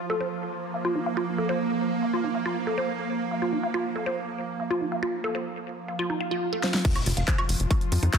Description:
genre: psychedelic trance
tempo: 140 BPM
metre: 4/4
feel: straight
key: unclear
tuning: A4 = 442 Hz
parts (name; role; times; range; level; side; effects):
- evolving wavetable pad; sustained chords; 0.0-8.2 s; F3 to F4; -30 LUFS; right 3 dB; ensemble chorus, built-in reverb, sidechain pumping
- woody wave-folded pluck; riff; 0.1-8.2 s; Eb4 to F5; -29 LUFS; equal; chorus, auto-pan, cassette tape, sidechain pumping, digital delay
- swell and impact; sound effects; 6.1-8.2 s; none; -32 LUFS; equal; none
- big-room dance drum kit; drums; 6.6-8.2 s; crash cymbal, handclaps, hi-hat, snare drum, woodblock; -28 LUFS; equal; overdrive
- electronic kick drum; drums; 6.8-8.2 s; none; -25 LUFS; left 1 dB; overdrive
- tight sequencer bass; bass; 7.1-8.1 s; F1 to F2; -24 LUFS; equal; none
room: moderate plate reverb, RT60 2.3 s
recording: none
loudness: -25 LUFS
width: side -7 dB against mid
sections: 0.0-6.8 A section; 6.8-8.2 B section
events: filter sweep on ambient pad 0.0-6.8; swell 6.1-6.8; drum fill 6.6; drop 6.8-8.2; impact 6.8-8.2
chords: 0.0 F5

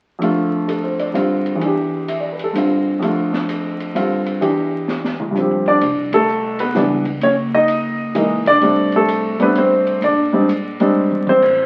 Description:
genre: jazz piano trio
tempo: 128 BPM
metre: 3/4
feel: swing 66% on 8ths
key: C major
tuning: A4 = 440 Hz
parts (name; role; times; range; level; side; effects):
- warm baby grand piano; melody; 0.2-11.7 s; E2 to E5; -18 LUFS; equal; none
- open jazz drum kit; drums; 0.2-11.6 s; crash cymbal, hi-hat, kick drum, ride cymbal, snare drum, toms; -32 LUFS; equal; none
- upright bass; bass; 5.8-11.7 s; F1 to Db2; -29 LUFS; equal; none
room: wet small room reverb, RT60 0.6 s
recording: very old 78 rpm record, vinyl crackle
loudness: -17 LUFS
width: mono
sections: 0.2-5.8 A section; 5.8-11.7 B section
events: drum fill 4.9-5.8, 11.0-11.4; band accent 6.0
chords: 0.2 F6; 1.1 G7sus4; 1.6 Em7; 2.5 G7sus4; 3.0 F6; 3.9 G7sus4; 4.4 Em7; 5.3 G7sus4; 5.8 Cmaj7sus2; 7.2 F#5; 8.6 F69; 10.0 Bb13

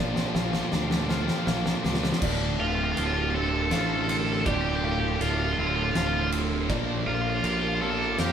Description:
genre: post-rock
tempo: 80 BPM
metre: 3/4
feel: straight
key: D minor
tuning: A4 = 439 Hz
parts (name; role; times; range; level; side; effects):
- clear symphonic string section; sustained chords; 0.0-8.3 s; Bb3 to D6; -40 LUFS; equal; none
- felt-muted upright piano; arpeggios; 0.0-8.3 s; D5 to F5; -38 LUFS; right 1 dB; none
- twangy electric guitar; arpeggios; 0.0-8.3 s; D2 to Bb4; -37 LUFS; equal; none
- sludgy distorted guitar; riff; 0.0-8.3 s; D2 to Bb3; -32 LUFS; left 5 dB; overdrive
- sludgy distorted guitar; riff; 0.0-8.3 s; D2 to Bb3; -33 LUFS; right 7 dB; overdrive
- overdriven fingered electric bass; bass; 0.0-8.3 s; D1 to F2; -30 LUFS; equal; none
- oversized low-tuned drum kit; drums; 0.2-8.3 s; crash cymbal, kick drum, ride cymbal, snare drum; -30 LUFS; equal; none
- cranked stack guitar; melody; 2.6-8.3 s; F4 to A4; -28 LUFS; right 1 dB; overdrive
room: moderate studio ambience, RT60 0.5 s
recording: band playing live in one room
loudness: -24 LUFS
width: side -8 dB against mid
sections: 0.0-2.2 A section; 2.2-8.3 B section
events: build-up 0.0-2.2; drum fill 0.0-2.2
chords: 0.0 Bb; 2.2 Dm7; 6.7 Bb

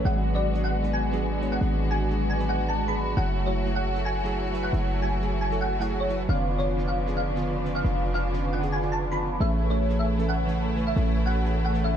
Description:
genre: future bass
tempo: 154 BPM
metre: 4/4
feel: half-time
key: F# minor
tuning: A4 = 444 Hz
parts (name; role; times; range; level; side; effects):
- glassy digital keys; accompaniment; 0.0-11.9 s; D3 to C#5; -31 LUFS; right 4 dB; chorus
- clear studio string section; sustained chords; 0.0-12.0 s; C#3 to F#4; -36 LUFS; left 2 dB; low-pass filter
- dense compressed supersaw; riff; 0.0-12.0 s; G#3 to C#6; -32 LUFS; right 1 dB; low-pass filter
- warm 808-style bass; bass; 0.0-12.0 s; E#1 to A1; -27 LUFS; equal; none
- thumb-piano-like synth pluck; melody; 0.1-11.9 s; C#5 to B5; -30 LUFS; equal; ensemble chorus, dub echo
room: light reverb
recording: none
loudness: -23 LUFS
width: side -9 dB against mid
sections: 0.0-12.0 A section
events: none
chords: 0.1 G#m7b5; 3.2 F#m9; 6.3 C#7b9/E#; 9.4 Amaj7

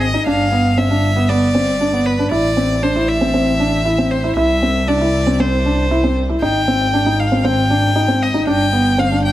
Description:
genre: electronica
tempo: 117 BPM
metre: 4/4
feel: straight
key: C major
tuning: A4 = 440 Hz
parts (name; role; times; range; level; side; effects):
- rich violin; melody; 0.0-9.3 s; B4 to G5; -19 LUFS; equal; none
- felt-muted upright piano; riff; 0.0-9.3 s; B3 to E4; -17 LUFS; equal; none
- clear studio double bass section; bass; 0.0-9.3 s; G1 to C2; -19 LUFS; equal; none
room: light reverb, studio reverb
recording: none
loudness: -13 LUFS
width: side -14 dB against mid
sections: 0.0-9.3 A section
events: none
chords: 0.3 G; 2.3 Am; 4.4 C; 6.4 Abmaj7; 8.5 G

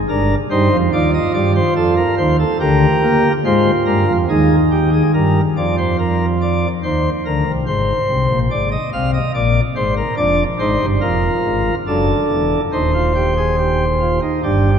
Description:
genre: classical, baroque-style 3-part fugue for pipe organ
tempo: 71 BPM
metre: 3/4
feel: straight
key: C minor from 10.2 s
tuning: A4 = 440 Hz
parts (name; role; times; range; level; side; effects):
- pipe organ, sparkling flutes; solo; 0.0-14.8 s; Eb1 to F5; -14 LUFS; equal; none
room: wet cathedral reverb, RT60 4.5 s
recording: none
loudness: -14 LUFS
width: side -7 dB against mid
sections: 0.0-5.1 A section; 5.1-14.8 B section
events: none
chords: 0.1 Eb/G; 1.8 F7; 2.6 Bb7/D; 4.3 Eb; 5.1 Gm; 6.8 Cm/Eb; 7.7 Fm/Ab; 9.3 Bb; 10.2 Ddim/F; 11.9 D/F#; 12.7 Cm/Eb

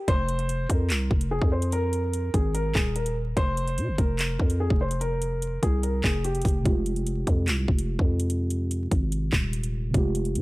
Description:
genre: hip hop, drill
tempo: 146 BPM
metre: 4/4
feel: half-time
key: F minor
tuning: A4 = 440 Hz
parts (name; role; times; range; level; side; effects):
- dark concert grand piano; melody; 0.0-6.6 s; G4 to C5; -30 LUFS; equal; tape echo
- growling 808-style bass; bass; 0.1-10.4 s; Eb1 to C3; -26 LUFS; equal; transformer saturation
- drill drum kit; drums; 0.1-10.4 s; handclaps, hi-hat, kick drum; -25 LUFS; equal; none
- muted felt-like synth keys; accompaniment; 6.6-10.4 s; C3 to G4; -31 LUFS; right 1 dB; chorus
room: digital ambience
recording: dry, gritty hardware recording, vinyl crackle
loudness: -23 LUFS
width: side -20 dB against mid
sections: 0.0-10.4 A section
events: none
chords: 0.1 Fm; 3.4 F5; 6.7 Fmadd9

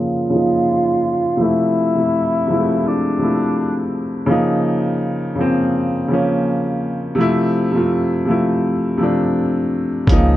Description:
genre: lo-fi hip hop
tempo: 83 BPM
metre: 4/4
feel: swing 58% on 16ths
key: F major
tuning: A4 = 441 Hz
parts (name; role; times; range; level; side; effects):
- breathy tenor saxophone; melody; 0.0-3.9 s; D4 to F4; -19 LUFS; equal; low-pass filter, tape echo
- dark upright piano; accompaniment; 0.0-10.4 s; C3 to F4; -16 LUFS; equal; low-pass filter
- saturated sub bass; bass; 10.1-10.4 s; Db2; -16 LUFS; equal; none
- lo-fi sampler-style drum kit; drums; 10.1-10.3 s; hi-hat, kick drum; -14 LUFS; equal; vintage 12-bit sampler grit
room: wet small room reverb, RT60 0.5 s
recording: dark, warm production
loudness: -15 LUFS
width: side -14 dB against mid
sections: 0.0-10.1 A section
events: filter sweep 0.0-10.1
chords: 0.0 Db69; 1.4 Fmaj7; 4.3 Db69; 7.2 Fmaj7

